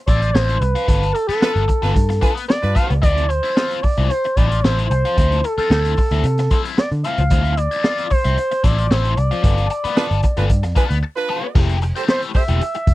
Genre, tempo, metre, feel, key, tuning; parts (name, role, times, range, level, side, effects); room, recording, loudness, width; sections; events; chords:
funk; 112 BPM; 4/4; straight; D dorian; A4 = 442 Hz
expressive portamento lead; melody; 0.1-12.9 s; A4 to F5; -21 LUFS; right 1 dB; chorus
biting overdriven guitar; accompaniment; 0.1-12.8 s; F3 to B4; -25 LUFS; left 7 dB; wah
vintage muted picked electric bass; bass; 0.1-12.9 s; E1 to D3; -18 LUFS; equal
crunchy breakbeat drum kit; drums; 0.1-12.9 s; crash cymbal, hi-hat, kick drum, snare drum; -18 LUFS; equal
warm horn section; second line; 1.4-3.0, 10.0-12.4 s; D4 to C5; -24 LUFS; right 4 dB
little or no reverb; dry, close 1970s-style studio recording; -15 LUFS; side -17 dB against mid
0.0-11.6 A section; 11.6-12.9 B section
band accent 0.9-3.0, 9.4-11.6; break 11.0-11.6
0.0 Dm9; 0.9 G9; 3.0 Dm9; 9.4 G9; 11.6 Fmaj9